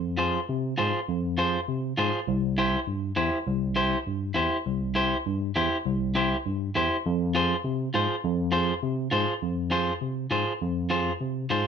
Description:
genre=latin, cumbia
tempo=202 BPM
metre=4/4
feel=straight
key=F harmonic minor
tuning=A4 = 440 Hz
part: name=tine electric piano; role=bass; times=0.0-11.6 s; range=C2 to C3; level=-28 LUFS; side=equal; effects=medium stereo tremolo
part: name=electric guitar at the edge of break-up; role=accompaniment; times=0.2-11.7 s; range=E4 to C5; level=-26 LUFS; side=equal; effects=none
room=light reverb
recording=minimal, uncompressed stereo recording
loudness=-24 LUFS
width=side -7 dB against mid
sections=0.0-9.4 A section; 9.4-11.7 B section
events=none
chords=0.0 Fm; 2.3 C; 7.0 Fm

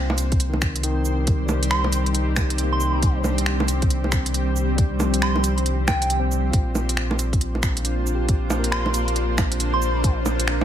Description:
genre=future garage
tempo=137 BPM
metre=4/4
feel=swing 63% on 16ths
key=C minor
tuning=A4 = 440 Hz
part: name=barky tine electric piano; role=accompaniment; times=0.0-10.6 s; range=Eb3 to C5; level=-30 LUFS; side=left 3 dB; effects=sidechain pumping, ping-pong delay
part: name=granular cloud pad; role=sustained chords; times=0.0-10.6 s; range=G3 to C5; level=-27 LUFS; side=equal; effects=built-in reverb, sidechain pumping
part: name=warm sub bass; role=bass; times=0.0-10.6 s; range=Bb1 to C2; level=-23 LUFS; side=equal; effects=tube saturation, sidechain pumping
part: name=organic electronic drum kit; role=drums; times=0.1-10.6 s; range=bongos, cabasa, finger snaps, hi-hat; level=-26 LUFS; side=right 2 dB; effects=none
part: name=electronic kick drum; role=drums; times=0.3-10.1 s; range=none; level=-21 LUFS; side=equal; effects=none
part: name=soft synth bell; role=melody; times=1.7-10.0 s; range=G5 to C6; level=-28 LUFS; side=right 2 dB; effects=chorus, ping-pong delay
room=light reverb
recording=none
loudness=-19 LUFS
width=side -10 dB against mid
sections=0.0-10.6 A section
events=none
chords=0.0 Cm; 6.5 Bbadd9

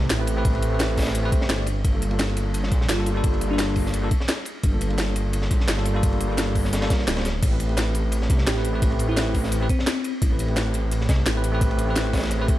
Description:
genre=liquid drum and bass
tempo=172 BPM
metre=4/4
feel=swing 53% on 16ths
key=unclear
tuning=A4 = 439 Hz
part: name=bell-like tine electric piano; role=accompaniment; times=0.0-12.6 s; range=G3 to D5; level=-28 LUFS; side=equal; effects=ping-pong delay
part: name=swelling detuned saw bass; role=bass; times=0.0-12.5 s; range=D1 to C2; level=-24 LUFS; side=equal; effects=none
part: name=crunchy breakbeat drum kit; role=drums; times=0.1-12.6 s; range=ride cymbal, snare drum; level=-32 LUFS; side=equal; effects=high-pass filter on cymbals, studio reverb, high-pass filter on snare, high-pass filter on room
part: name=drum and bass drum kit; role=drums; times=0.1-12.6 s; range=crash cymbal, hi-hat, snare drum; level=-28 LUFS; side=equal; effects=studio reverb
part: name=electronic kick drum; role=drums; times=0.5-12.6 s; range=none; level=-22 LUFS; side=equal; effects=studio reverb
part: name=bell-like FM electric piano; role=melody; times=2.9-3.8, 8.5-10.1 s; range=C4 to G4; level=-30 LUFS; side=left 2 dB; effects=chorus, ping-pong delay
room=digital ambience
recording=dark, warm production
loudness=-20 LUFS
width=side -14 dB against mid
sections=0.0-12.6 A section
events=none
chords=0.0 Am9; 1.7 Gm9; 7.4 Am9

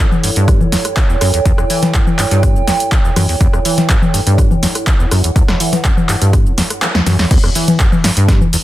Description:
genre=acid house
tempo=123 BPM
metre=4/4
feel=straight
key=E dorian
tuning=A4 = 443 Hz
part: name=liquid acid bass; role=riff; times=0.0-8.6 s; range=E2 to E3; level=-16 LUFS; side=equal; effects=tube saturation, analog chorus, ping-pong delay
part: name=warbly tape-like pad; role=texture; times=0.0-7.3 s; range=E4 to G5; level=-22 LUFS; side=right 4 dB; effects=chorus, built-in reverb, phaser, sidechain pumping
part: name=punchy analog drum machine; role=drums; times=0.1-8.6 s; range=congas, crash cymbal, handclaps, hi-hat, rim click, shaker, snare drum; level=-16 LUFS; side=left 2 dB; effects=overdrive, studio ambience
part: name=electronic kick drum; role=drums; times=0.5-8.4 s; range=none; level=-13 LUFS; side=equal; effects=studio ambience
room=light reverb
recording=dense, heavily limited modern master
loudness=-10 LUFS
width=side -15 dB against mid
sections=0.0-7.3 A section; 7.3-8.6 B section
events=filter sweep on acid bass 0.0-7.3; kick drops out 6.8-7.3; band accent 6.8; drum fill 7.1; drop 7.3-8.6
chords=0.0 Em

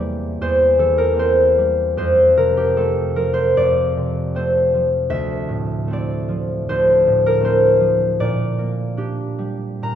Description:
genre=classical, solo harp piece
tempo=77 BPM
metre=4/4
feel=rubato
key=F major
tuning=A4 = 438 Hz
part: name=concert harp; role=solo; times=0.0-9.9 s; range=D2 to Bb5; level=-15 LUFS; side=equal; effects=none
room=wet recital hall reverb, RT60 1.5 s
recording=recorded in a church or concert hall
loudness=-15 LUFS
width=side -10 dB against mid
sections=0.0-9.9 A section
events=none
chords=0.0 C7/E; 2.0 F; 5.1 Dm7; 8.2 Gm/Bb

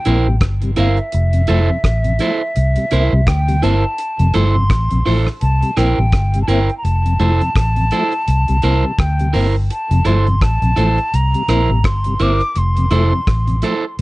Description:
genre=roots reggae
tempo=84 BPM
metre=4/4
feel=swing 58% on 16ths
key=F major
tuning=A4 = 440 Hz
part: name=mellow hollow concert flute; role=melody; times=0.0-14.0 s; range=E5 to D6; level=-21 LUFS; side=equal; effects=none
part: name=electric guitar at the edge of break-up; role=accompaniment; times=0.1-13.8 s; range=E4 to C5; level=-20 LUFS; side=right 4 dB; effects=none
part: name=mellow tonewheel organ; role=accompaniment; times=0.1-13.7 s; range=F2 to E4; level=-22 LUFS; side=left 2 dB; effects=chorus vibrato, slow rotary speaker
part: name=vintage muted fingered electric bass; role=bass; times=0.1-14.0 s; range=F1 to D2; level=-15 LUFS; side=equal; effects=none
part: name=damped 70s drum kit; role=drums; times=0.1-14.0 s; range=hi-hat, kick drum, rim click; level=-18 LUFS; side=equal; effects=vintage 12-bit sampler grit
room=little or no reverb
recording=cassette tape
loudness=-13 LUFS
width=side -20 dB against mid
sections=0.0-14.0 A section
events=none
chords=0.0 C7; 1.1 Fmaj7; 2.6 C7; 4.0 Fmaj7; 5.4 C7; 6.8 Fmaj7; 8.3 C7; 9.7 Fmaj7; 11.1 C7; 12.6 Fmaj7

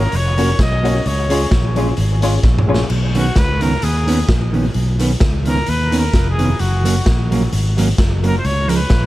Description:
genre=ska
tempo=130 BPM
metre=4/4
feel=swing 54% on 8ths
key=unclear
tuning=A4 = 441 Hz
part: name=breathy trumpet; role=melody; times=0.0-9.1 s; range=Gb4 to Eb5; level=-24 LUFS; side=equal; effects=dub echo
part: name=hollow-body jazz guitar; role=accompaniment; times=0.0-8.8 s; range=Eb3 to Gb4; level=-21 LUFS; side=right 2 dB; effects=none
part: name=dark upright piano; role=stabs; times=0.0-2.8 s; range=Db4 to Db5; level=-23 LUFS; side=left 4 dB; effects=dub echo
part: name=fingered electric bass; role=bass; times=0.0-9.1 s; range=F1 to Eb2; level=-17 LUFS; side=equal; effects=none
part: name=raw garage drum kit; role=drums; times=0.1-9.0 s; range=crash cymbal, hi-hat, kick drum, snare drum, toms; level=-18 LUFS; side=equal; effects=none
room=little or no reverb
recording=none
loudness=-13 LUFS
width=side -16 dB against mid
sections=0.0-2.9 A section; 2.9-9.1 A section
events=trumpet solo 0.0-2.9, 2.9-9.1; drum fill 2.4-2.9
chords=0.0 Gb; 1.1 Db; 2.9 Cbadd9; 6.6 Gb; 8.4 Db

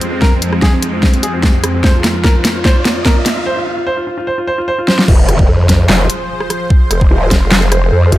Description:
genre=heavy wobble dubstep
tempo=148 BPM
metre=4/4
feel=half-time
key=F minor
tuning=A4 = 439 Hz
part: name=clear grand piano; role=melody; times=0.0-5.1 s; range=C4 to C5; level=-18 LUFS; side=equal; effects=tape echo
part: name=supersaw pad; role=sustained chords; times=0.0-8.2 s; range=F2 to C5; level=-20 LUFS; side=right 1 dB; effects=phaser, sidechain pumping
part: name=dubstep drum kit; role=drums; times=0.0-8.2 s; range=crash cymbal, handclaps, hi-hat, rim click, snare drum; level=-15 LUFS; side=equal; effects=overdrive
part: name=riser and impact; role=sound effects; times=0.4-6.7 s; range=none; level=-24 LUFS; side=equal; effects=none
part: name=warbly tape-like pad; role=texture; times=0.0-3.5 s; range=none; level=barely audible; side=none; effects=none
part: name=electronic kick drum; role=drums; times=0.2-8.2 s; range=none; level=-11 LUFS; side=equal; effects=overdrive
part: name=growl bass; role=bass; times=5.1-8.2 s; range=Eb1 to Ab1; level=-13 LUFS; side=equal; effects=distortion, chorus, overdrive
part: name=vowel-sweep wobble bass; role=bass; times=5.5-8.1 s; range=F1 to F2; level=-11 LUFS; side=equal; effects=chorus, overdrive
room=light reverb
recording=none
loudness=-10 LUFS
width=side -15 dB against mid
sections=0.0-5.1 A section; 5.1-8.2 B section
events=build-up 0.0-5.1; drum fill 0.0-3.5, 4.9; riser 0.4-3.5; break 3.5-5.1; drop 5.1-8.2; impact 5.1-6.7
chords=0.0 Fm

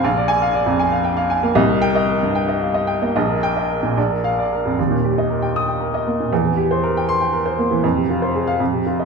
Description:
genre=classical, virtuoso piano study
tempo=78 BPM (dotted quarters)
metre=6/8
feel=rubato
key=Eb major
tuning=A4 = 441 Hz
part: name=warm baby grand piano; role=solo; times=0.0-9.1 s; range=Bb1 to Eb6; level=-16 LUFS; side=right 1 dB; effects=none
room=wet recital hall reverb, RT60 1.8 s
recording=minimal, uncompressed stereo recording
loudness=-16 LUFS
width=side -4 dB against mid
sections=0.0-4.8 A section; 4.8-9.1 B section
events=none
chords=0.1 Bb7; 1.6 Cm7; 3.1 Eb/Bb; 4.0 Bb; 4.8 Eb; 6.3 C7/E; 7.8 Fm

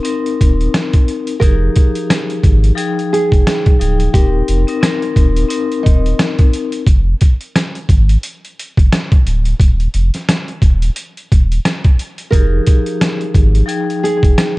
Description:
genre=hip hop, boom-bap hip-hop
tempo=88 BPM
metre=4/4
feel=swing 58% on 16ths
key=F minor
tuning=A4 = 439 Hz
part: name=vibraphone with medium hard mallets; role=accompaniment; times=0.0-6.8, 12.3-14.6 s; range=F3 to G5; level=-19 LUFS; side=left 4 dB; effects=high-pass filter, low-pass filter
part: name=trip hop sampler-style drum kit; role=drums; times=0.0-14.6 s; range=hi-hat, kick drum, rim click, snare drum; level=-12 LUFS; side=equal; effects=vintage 12-bit sampler grit
part: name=warm sub bass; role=bass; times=0.4-14.3 s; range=D1 to Ab1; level=-14 LUFS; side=equal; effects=none
part: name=nylon-string guitar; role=melody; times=1.4-6.3, 12.3-14.6 s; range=Eb4 to Bb4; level=-20 LUFS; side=right 3 dB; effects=high-pass filter, low-pass filter, slapback echo
room=little or no reverb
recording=dark, warm production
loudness=-11 LUFS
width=side -20 dB against mid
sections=0.0-1.4 A section; 1.4-14.6 B section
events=none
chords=0.0 Cm7/Eb; 1.4 Fm9; 4.1 Cm7/Eb; 6.9 Fm; 9.6 N.C.; 12.3 Fm9

